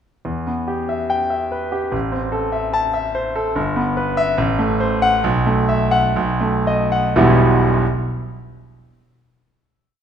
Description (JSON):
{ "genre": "classical, romantic character piece for solo piano", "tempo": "58-75 BPM", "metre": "2/4", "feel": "rubato", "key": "E minor", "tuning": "A4 = 439 Hz", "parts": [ { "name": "bright concert grand piano", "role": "solo", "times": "0.2-7.8 s", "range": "E1 to A5", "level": "-16 LUFS", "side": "equal", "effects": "none" } ], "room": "wet recital hall reverb, RT60 1.6 s", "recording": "none", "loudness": "-16 LUFS", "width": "side -8 dB against mid", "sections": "0.3-7.2 A section; 7.2-9.1 final chord", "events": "slowing down 2.7-7.2", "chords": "0.3 Em; 1.9 Am; 3.6 Em/G; 4.4 F#dim/A; 5.2 B7sus4; 6.2 B7; 7.2 Em", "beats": "| 0.26 1.11 | 1.94 2.75 | 3.57 4.39 | 5.24 6.17 | 7.16" }